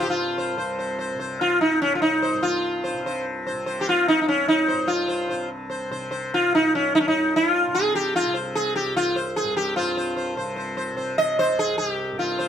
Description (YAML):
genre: indian classical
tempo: 147 BPM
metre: 3/4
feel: straight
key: C raga bhairavi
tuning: A4 = 440 Hz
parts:
  - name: sitar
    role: melody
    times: 0.0-12.5 s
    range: Db4 to Eb5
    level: -21 LUFS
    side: equal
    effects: none
  - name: tanpura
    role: drone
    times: 0.0-12.5 s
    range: C2 to C3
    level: -33 LUFS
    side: left 2 dB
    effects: none
room: moderate small room reverb, RT60 0.6 s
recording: none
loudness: -20 LUFS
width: side -9 dB against mid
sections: 0.0-9.8 A section; 9.8-12.5 B section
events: none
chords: none